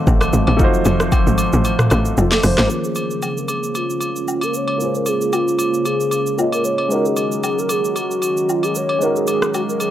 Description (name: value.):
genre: amapiano.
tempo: 114 BPM.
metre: 4/4.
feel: swing 55% on 16ths.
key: Bb minor.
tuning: A4 = 440 Hz.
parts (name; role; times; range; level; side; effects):
warm baby grand piano; accompaniment; 0.0-9.9 s; Ab3 to Eb5; -24 LUFS; equal; low-pass filter.
glassy FM pad; sustained chords; 0.0-9.9 s; Db3 to F5; -24 LUFS; equal; ensemble chorus, built-in reverb, low-pass filter.
tight log drum bass; bass; 0.1-2.7 s; F1 to A1; -17 LUFS; equal; none.
afro-pop drum kit; drums; 0.1-9.9 s; hi-hat, kick drum, rim click, shaker, snare drum, toms; -20 LUFS; equal; none.
woodblock and agogo bells; percussion; 0.1-9.9 s; none; -25 LUFS; equal; none.
hollow clarinet-like synth lead; melody; 2.2-9.9 s; F4 to Db5; -20 LUFS; equal; chorus, low-pass filter, tape echo.
room: light reverb.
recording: dry, gritty hardware recording.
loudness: -16 LUFS.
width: side -12 dB against mid.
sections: 0.0-2.7 A section; 2.7-9.9 B section.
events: drop 0.0-2.7; kick muted 1.6-2.7.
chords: 0.0 F7b9; 2.7 Bbm9; 6.9 Ab7sus4.